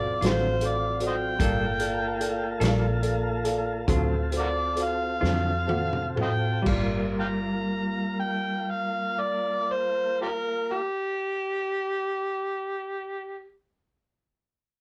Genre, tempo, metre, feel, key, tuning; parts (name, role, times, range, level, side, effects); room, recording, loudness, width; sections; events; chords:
slow blues; 40-52 BPM (dotted quarters); 12/8; straight; G minor; A4 = 436 Hz
overdriven harmonica; melody; 0.0-13.5 s; F4 to Bb5; -30 LUFS; equal
dark upright piano; accompaniment; 0.0-10.8 s; F4 to F#5; -34 LUFS; equal
tonewheel organ; sustained chords; 0.0-10.8 s; F#3 to A4; -36 LUFS; equal; slow rotary speaker
vintage muted fingered electric bass; bass; 0.0-10.8 s; E#1 to E#2; -33 LUFS; equal
semi-hollow electric guitar; accompaniment; 0.2-10.9 s; D3 to A4; -33 LUFS; equal; tremolo
vintage drum kit; drums; 0.2-6.9 s; china cymbal, hi-hat, kick drum, snare drum, toms; -32 LUFS; equal
moderate studio reverb, RT60 0.5 s; band playing live in one room; -27 LUFS; mono
0.0-6.7 A section; 6.7-12.7 B section
slowing down 0.0-6.7; drum fill 5.2-6.7
0.0 D7#9; 1.4 Gm9; 3.9 D7#9; 6.7 Gm7